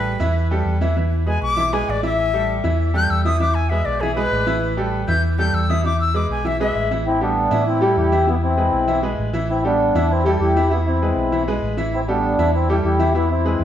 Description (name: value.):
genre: latin.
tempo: 197 BPM.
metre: 4/4.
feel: straight.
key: A minor.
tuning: A4 = 440 Hz.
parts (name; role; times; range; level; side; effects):
breathy bright silver concert flute; melody; 0.0-6.9 s; G#4 to G6; -23 LUFS; left 3 dB; tape echo.
bright upright piano; accompaniment; 0.0-13.6 s; E3 to E5; -23 LUFS; right 1 dB; none.
fingered electric bass; bass; 0.0-13.6 s; A1 to A2; -21 LUFS; equal; none.
mellow accordion; melody; 7.1-13.6 s; B3 to G4; -19 LUFS; left 1 dB; none.
room: wet large studio reverb, RT60 1.1 s.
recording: heard from further back in the room.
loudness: -17 LUFS.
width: side -10 dB against mid.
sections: 0.0-7.1 A section; 7.1-13.6 B section.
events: flute solo 0.0-7.1.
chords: 0.0 A5; 1.0 E7; 2.2 A5; 3.4 E; 4.6 A5; 5.8 E; 7.1 Am7; 8.3 E; 9.5 Am7; 10.7 E; 11.9 A7(no3).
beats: 0.05 0.36 0.66 | 0.97 1.27 1.58 1.88 | 2.19 2.49 2.79 3.10 | 3.40 3.71 4.01 4.32 | 4.62 4.93 5.23 5.54 | 5.84 6.15 6.45 6.76 | 7.06 7.37 7.67 7.97 | 8.28 8.58 8.89 9.19 | 9.49 9.80 10.10 10.41 | 10.71 11.02 11.32 11.62 | 11.93 12.23 12.54 12.84 | 13.14 13.45.